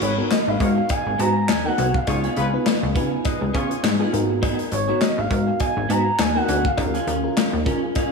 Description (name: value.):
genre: early-eighties boogie funk.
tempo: 102 BPM.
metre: 4/4.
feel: swing 56% on 16ths.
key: G# dorian.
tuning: A4 = 440 Hz.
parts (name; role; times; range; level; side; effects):
expressive synth lead; melody; 0.0-7.2 s; C#5 to A#5; -25 LUFS; equal; chorus, slapback echo.
mellow horn section; second line; 0.0-3.8 s; E#4 to D#5; -32 LUFS; left 4 dB; slapback echo.
clean electric guitar; riff; 0.0-8.1 s; B3 to A#4; -28 LUFS; right 4 dB; ensemble chorus, slapback echo.
plucky analog bass; bass; 0.0-7.9 s; G#1 to D#3; -24 LUFS; left 1 dB; none.
modern studio drum kit; drums; 0.0-8.1 s; handclaps, hi-hat, kick drum, snare drum; -24 LUFS; left 2 dB; none.
mellow FM electric piano; accompaniment; 0.2-8.1 s; B3 to B4; -27 LUFS; equal; chorus, slapback echo.
cowbell; percussion; 0.3-8.1 s; none; -33 LUFS; left 4 dB; slapback echo.
room: moderate lush hall reverb, RT60 1.8 s, small room ambience.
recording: big arena sound.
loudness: -18 LUFS.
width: side -4 dB against mid.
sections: 0.0-8.1 A section.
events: none.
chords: 0.0 G#m7; 2.1 C#7; 4.1 G#m7; 6.8 D#9sus4.